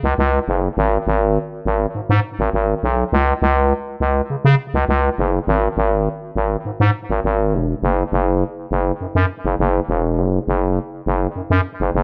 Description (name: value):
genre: funk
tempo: 102 BPM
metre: 4/4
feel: straight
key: unclear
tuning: A4 = 440 Hz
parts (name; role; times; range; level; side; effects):
- growling FM bass; solo; 0.0-12.0 s; E1 to C#3; -19 LUFS; equal; analog delay
room: moderate studio reverb, RT60 0.6 s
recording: rough home demo mix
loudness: -19 LUFS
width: mono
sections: 0.0-7.8 A section; 7.8-12.0 B section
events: none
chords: none